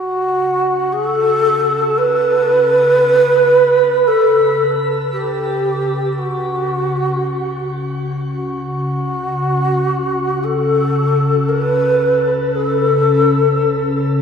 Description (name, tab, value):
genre	dark ambient drone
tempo	free time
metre	none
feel	none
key	unclear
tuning	A4 = 440 Hz
part	breathy mellow long shakuhachi	melody	0.0-14.1 s	F#4 to B4	-14 LUFS	equal	shimmer reverb, tape echo
part	sweeping resonant pad	sustained chords	0.0-14.2 s	C#3 to C#4	-21 LUFS	left 1 dB	chorus
room	wet cathedral reverb, RT60 5.5 s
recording	in a vast, echoing space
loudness	-13 LUFS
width	side -6 dB against mid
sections	0.0-14.2 A section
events	fade-in on analog synth pad 0.0-14.2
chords	none